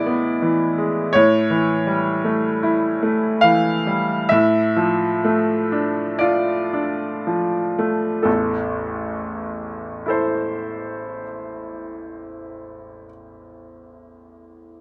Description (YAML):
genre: classical, romantic nocturne for solo piano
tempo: 27-42 BPM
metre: 4/4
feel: rubato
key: A minor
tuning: A4 = 440 Hz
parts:
  - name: bright upright piano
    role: solo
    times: 0.0-14.8 s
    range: A1 to F5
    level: -21 LUFS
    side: equal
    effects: none
room: light reverb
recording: none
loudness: -20 LUFS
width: mono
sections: 0.0-8.3 A section; 8.3-14.8 B section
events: slowing down 0.0-8.3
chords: 0.0 E7/A; 1.1 A7; 4.3 Dm/A; 8.3 Am